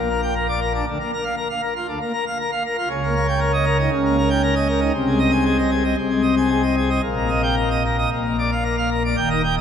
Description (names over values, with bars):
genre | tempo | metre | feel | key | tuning
classical, organ toccata | 116 BPM | 4/4 | straight | Eb major | A4 = 441 Hz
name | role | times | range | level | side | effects
pipe organ, plenum | solo | 0.0-9.6 s | Eb1 to Ab5 | -18 LUFS | equal | none
room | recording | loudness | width
wet cathedral reverb, RT60 4.7 s | none | -18 LUFS | side -8 dB against mid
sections
0.0-9.2 A section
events
none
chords
0.0 Gm/Bb; 0.9 Bb/D; 2.9 Eb7/Db; 5.0 Ab/C; 7.0 Eb/Bb; 8.1 Bb